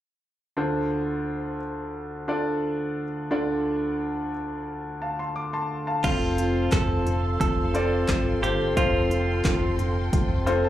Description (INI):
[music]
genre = piano-driven pop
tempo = 88 BPM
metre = 4/4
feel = straight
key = D minor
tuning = A4 = 440 Hz
[part]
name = clear concert grand piano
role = accompaniment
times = 0.6-10.7 s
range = D2 to D6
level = -26 LUFS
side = left 1 dB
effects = slapback echo
[part]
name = direct-recorded clean electric guitar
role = melody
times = 6.0-10.1 s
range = F4 to A4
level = -29 LUFS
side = right 4 dB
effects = phaser, slapback echo
[part]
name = warm studio string section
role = sustained chords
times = 6.0-10.7 s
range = A4 to C6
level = -37 LUFS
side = left 2 dB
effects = none
[part]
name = fingerpicked steel-string acoustic guitar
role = riff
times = 6.0-10.7 s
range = F3 to A4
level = -32 LUFS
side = right 2 dB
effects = slapback echo
[part]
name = woody fretless electric bass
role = bass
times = 6.0-10.7 s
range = F1 to G1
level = -26 LUFS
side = equal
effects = ensemble chorus
[part]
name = deep house drum kit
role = drums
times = 6.0-10.6 s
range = crash cymbal, handclaps, hi-hat, kick drum, snare drum, toms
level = -26 LUFS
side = equal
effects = none
[part]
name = group handclap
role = percussion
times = 6.7-9.6 s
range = none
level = -41 LUFS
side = left 3 dB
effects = none
[sound]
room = light reverb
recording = live gig heard through the venue's PA, club reverb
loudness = -23 LUFS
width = side -12 dB against mid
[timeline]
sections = 0.6-6.0 A section; 6.0-10.7 B section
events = grand piano fill 10.1-10.7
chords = 0.6 Dm7; 6.0 F